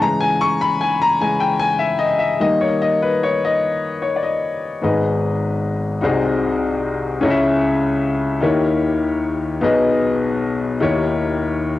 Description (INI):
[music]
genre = gospel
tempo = 50 BPM (dotted quarters)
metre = 6/8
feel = straight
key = G# harmonic minor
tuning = A4 = 440 Hz
[part]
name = warm baby grand piano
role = solo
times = 0.0-11.8 s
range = G#1 to C#6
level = -16 LUFS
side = left 2 dB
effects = cassette tape
[sound]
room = light reverb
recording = home recording on cassette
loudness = -16 LUFS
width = side -15 dB against mid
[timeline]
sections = 0.0-4.8 A section; 4.8-11.8 B section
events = grand piano solo 0.0-4.8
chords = 0.0 C#m; 2.4 D#; 4.8 G#m; 6.0 G#7/B#; 7.2 C#m; 8.4 D#7b9; 9.6 G#m/B; 10.8 D#7b9